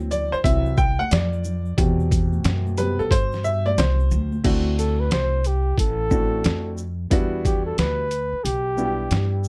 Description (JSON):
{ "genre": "hip hop, jazz-hop", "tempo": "90 BPM", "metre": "4/4", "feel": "swing 64% on 16ths", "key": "unclear", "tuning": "A4 = 440 Hz", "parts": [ { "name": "warm upright piano", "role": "accompaniment", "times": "0.0-9.5 s", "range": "B2 to G5", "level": "-28 LUFS", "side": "equal", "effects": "none" }, { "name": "upright bass", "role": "bass", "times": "0.0-9.5 s", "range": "A1 to G2", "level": "-26 LUFS", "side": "equal", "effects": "none" }, { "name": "congas and egg shaker", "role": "percussion", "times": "0.0-4.4 s", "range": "none", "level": "-37 LUFS", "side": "equal", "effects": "none" }, { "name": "boom bap sampler-style drum kit", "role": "drums", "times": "0.1-9.5 s", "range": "crash cymbal, hi-hat, kick drum, shaker, snare drum", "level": "-25 LUFS", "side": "equal", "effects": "none" }, { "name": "breathy flugelhorn", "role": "melody", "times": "4.8-9.4 s", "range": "G4 to C5", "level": "-28 LUFS", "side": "equal", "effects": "none" } ], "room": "little or no reverb", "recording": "dark, warm production", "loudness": "-22 LUFS", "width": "mono", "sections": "0.0-4.4 A section; 4.4-9.5 B section", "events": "upright piano solo 0.0-4.4", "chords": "0.0 D9; 1.8 Cmaj9#11; 4.4 D9; 7.1 Em9" }